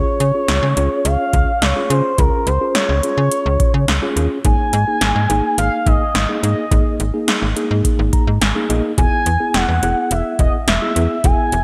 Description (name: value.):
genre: synth-pop.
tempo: 106 BPM.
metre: 4/4.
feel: straight.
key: unclear.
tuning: A4 = 440 Hz.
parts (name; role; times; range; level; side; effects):
expressive synth lead; melody; 0.0-11.6 s; Bb4 to Ab5; -22 LUFS; equal; chorus, digital delay.
mellow tine electric piano; accompaniment; 0.0-11.6 s; Bb3 to Bb5; -25 LUFS; equal; none.
slap-like FM bass; bass; 0.0-11.6 s; E1 to Db3; -20 LUFS; equal; none.
electro analog drum machine; drums; 0.2-11.6 s; hi-hat, kick drum, snare drum; -20 LUFS; equal; gated reverb.
room: moderate plate reverb, RT60 2.9 s.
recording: bright 1980s-style digital production.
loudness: -17 LUFS.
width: mono.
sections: 0.0-11.6 A section.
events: tine electric piano fill 7.8-9.0.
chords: 0.0 Db; 4.5 Absus2; 9.0 E.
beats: 0.49 1.05 1.62 | 2.19 2.75 3.32 3.88 | 4.45 5.02 5.58 6.15 | 6.71 7.28 7.85 8.41 | 8.98 9.54 10.11 10.68 | 11.24.